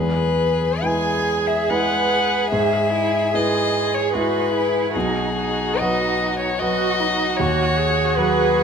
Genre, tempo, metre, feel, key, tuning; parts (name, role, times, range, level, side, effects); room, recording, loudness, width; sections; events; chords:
classical, slow romantic movement for piano quartet; 62-78 BPM; 3/4; rubato; E major; A4 = 440 Hz
rich violin; melody; 0.0-8.6 s; G#4 to G#5; -21 LUFS; left 4 dB
warm violin; second line; 0.0-8.6 s; F#4 to G#4; -27 LUFS; left 2 dB
warm concert grand piano; accompaniment; 0.0-8.6 s; B1 to B4; -23 LUFS; right 1 dB
warm cello; second line; 0.8-8.6 s; D#4 to B4; -24 LUFS; right 10 dB
moderate recital hall reverb, RT60 1.6 s; -17 LUFS; side -6 dB against mid
0.0-8.6 A section
0.0 E; 2.5 E/G#; 4.9 B; 7.4 B/D#